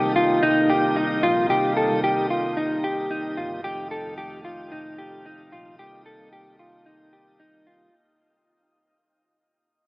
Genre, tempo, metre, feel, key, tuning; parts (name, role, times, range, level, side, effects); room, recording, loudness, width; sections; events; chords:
dream pop; 112 BPM; 4/4; straight; C dorian; A4 = 440 Hz
mellow tonewheel organ; sustained chords; 0.0-7.9 s; C3 to Eb4; -29 LUFS; equal; slow rotary speaker
mellow electric guitar; arpeggios; 0.0-7.9 s; Eb4 to A4; -22 LUFS; equal; wide subtle chorus, tape echo
vintage muted picked electric bass; bass; 0.0-7.9 s; F1 to C2; -38 LUFS; equal
wet shimmer reverb, RT60 5.3 s; small speaker sound; -20 LUFS; side -27 dB against mid
0.0-7.9 A section
fade-out 0.0-7.9
0.0 Cm7; 3.6 F7; 5.8 Cm7